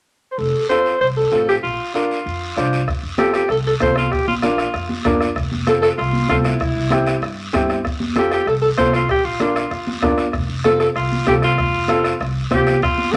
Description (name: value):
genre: latin, cumbia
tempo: 193 BPM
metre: 4/4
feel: straight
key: F major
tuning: A4 = 440 Hz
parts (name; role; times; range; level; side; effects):
- breathy alto saxophone; melody; 0.3-13.2 s; E4 to C5; -21 LUFS; equal; none
- upright bass; bass; 0.4-13.2 s; F1 to G2; -27 LUFS; equal; none
- guiro; percussion; 0.4-13.2 s; none; -33 LUFS; equal; none
- clear upright piano; accompaniment; 0.7-13.2 s; C4 to C5; -24 LUFS; equal; none
- bombo; percussion; 2.9-13.2 s; none; -27 LUFS; equal; none
- congas; percussion; 2.9-13.2 s; none; -28 LUFS; equal; none
room: moderate studio reverb, RT60 0.9 s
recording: lossy compression artefacts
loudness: -18 LUFS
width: mono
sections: 0.4-2.9 A section; 2.9-12.8 B section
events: none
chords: 0.4 F; 1.6 Bb; 2.9 F; 4.1 Bb; 5.4 F; 6.6 C; 7.9 F; 9.1 Bb; 10.3 F